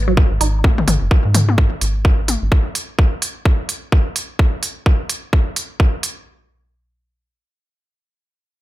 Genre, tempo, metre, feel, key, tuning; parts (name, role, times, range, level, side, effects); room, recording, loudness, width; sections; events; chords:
minimal techno; 128 BPM; 4/4; swing 60% on 16ths; A4 = 440 Hz
rubbery square bass; bass; 0.0-2.5 s; F#1 to G#2; -18 LUFS; equal; tube saturation, sidechain pumping
resonant blip pluck; riff; 0.1-0.5 s; F#3 to D#4; -21 LUFS; right 4 dB; phaser, sidechain pumping, ping-pong delay
electronic kick drum; drums; 0.2-5.9 s; -14 LUFS; equal
electronic hi-hat; drums; 0.4-6.1 s; -22 LUFS; right 2 dB
electronic toms; percussion; 0.6-2.4 s; -22 LUFS; left 4 dB; digital delay
little or no reverb; faint mains hum; -15 LUFS; side -16 dB against mid
0.0-6.3 A section